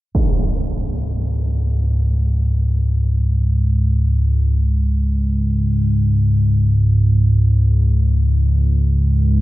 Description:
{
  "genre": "ambient",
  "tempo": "free time",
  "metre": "none",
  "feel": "none",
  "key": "unclear",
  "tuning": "A4 = 440 Hz",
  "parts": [
    { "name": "analog drone", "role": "drone", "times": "0.6-9.4 s", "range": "C#2 to G#2", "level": "-14 LUFS", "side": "equal", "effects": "wide subtle chorus" }
  ],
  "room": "moderate huge ambient reverb, RT60 7.5 s",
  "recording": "none",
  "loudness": "-14 LUFS",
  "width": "side -17 dB against mid",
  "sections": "0.1-9.4 A section",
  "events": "none",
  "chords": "0.1 C#5"
}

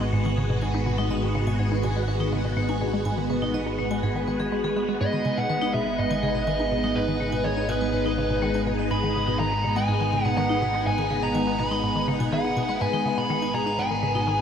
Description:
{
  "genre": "ambient, sequencer-driven space music",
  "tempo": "123 BPM",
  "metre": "4/4",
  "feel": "straight",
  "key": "G# minor",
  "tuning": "A4 = 439 Hz",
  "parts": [
    { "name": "phased string machine", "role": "sustained chords", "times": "0.0-14.4 s", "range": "G#3 to G#4", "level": "-27 LUFS", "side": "equal", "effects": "ensemble chorus, phaser" },
    { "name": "hollow square pluck", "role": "riff", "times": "0.0-14.3 s", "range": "G#2 to D#4", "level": "-30 LUFS", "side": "equal", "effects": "chorus, phaser, cassette tape, tape echo" },
    { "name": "fat analog bass", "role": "bass", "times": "0.0-14.4 s", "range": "G#1", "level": "-29 LUFS", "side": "equal", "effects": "none" },
    { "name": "vibraphone with hard mallets", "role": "arpeggios", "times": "0.1-14.2 s", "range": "G#3 to G#5", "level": "-32 LUFS", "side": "moving between left 5 dB and right 2 dB", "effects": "auto-pan, tape echo" },
    { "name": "fuzz lead guitar", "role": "melody", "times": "5.0-14.4 s", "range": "B4 to B5", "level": "-27 LUFS", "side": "equal", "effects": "distortion, tape echo" }
  ],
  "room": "wet huge ambient reverb, RT60 7.3 s",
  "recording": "none",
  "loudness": "-22 LUFS",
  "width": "side -8 dB against mid",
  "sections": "0.0-14.4 A section",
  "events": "none",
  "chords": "0.0 G#m"
}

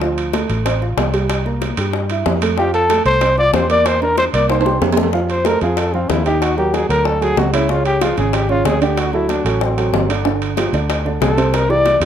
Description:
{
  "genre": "Afro-Cuban jazz",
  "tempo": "188 BPM",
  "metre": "4/4",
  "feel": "straight",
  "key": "unclear",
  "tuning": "A4 = 442 Hz",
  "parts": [
    { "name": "dark upright piano", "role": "accompaniment", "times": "0.0-12.1 s", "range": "C3 to G5", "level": "-20 LUFS", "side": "right 4 dB", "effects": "none" },
    { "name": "vintage muted fingered electric bass", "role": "bass", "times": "0.0-12.1 s", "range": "G1 to G2", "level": "-20 LUFS", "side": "equal", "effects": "none" },
    { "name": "bongos", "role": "percussion", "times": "0.0-12.0 s", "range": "none", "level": "-23 LUFS", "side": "left 7 dB", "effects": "none" },
    { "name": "timbales", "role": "percussion", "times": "0.2-12.1 s", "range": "none", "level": "-24 LUFS", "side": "right 7 dB", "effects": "none" },
    { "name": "breathy trumpet", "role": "melody", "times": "2.6-12.0 s", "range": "C4 to D5", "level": "-17 LUFS", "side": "left 1 dB", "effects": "none" },
    { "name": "breathy mellow silver concert flute", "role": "second line", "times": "2.6-4.8 s", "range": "G5 to D6", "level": "-23 LUFS", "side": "left 4 dB", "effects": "none" }
  ],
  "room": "light reverb",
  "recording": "none",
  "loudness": "-14 LUFS",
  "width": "side -9 dB against mid",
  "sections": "0.0-5.1 A section; 5.1-12.1 B section",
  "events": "drum fill 4.5-5.1; trumpet solo 5.1-12.1",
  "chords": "0.0 Dm7; 1.3 C7; 2.6 F; 3.9 C9; 4.5 C5; 5.1 F; 6.4 Ebm; 7.1 D; 7.7 Db; 9.0 D7; 10.3 G5; 11.5 C9"
}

